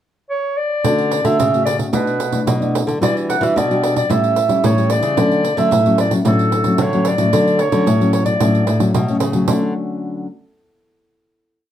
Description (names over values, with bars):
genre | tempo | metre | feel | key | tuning
samba and choro | 111 BPM | 4/4 | straight | D major | A4 = 443 Hz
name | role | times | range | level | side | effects
warm clarinet | melody | 0.3-8.9 s | A4 to F#5 | -18 LUFS | right 1 dB | plate reverb
nylon-string guitar | bass | 0.8-9.7 s | A2 to E3 | -19 LUFS | left 1 dB | none
pandeiro | percussion | 0.8-9.6 s | none | -22 LUFS | right 5 dB | none
nylon-string guitar | accompaniment | 0.9-10.3 s | A2 to F#4 | -19 LUFS | left 2 dB | none
room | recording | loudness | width
moderate studio reverb, RT60 0.5 s | none | -14 LUFS | side -10 dB against mid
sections
0.0-0.8 pickup bar; 0.8-9.5 A section; 9.5-11.6 final chord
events
none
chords
0.0 N.C.; 0.8 Dmaj7; 1.9 Bm7; 3.0 Em9; 4.1 A7; 5.2 Dmaj7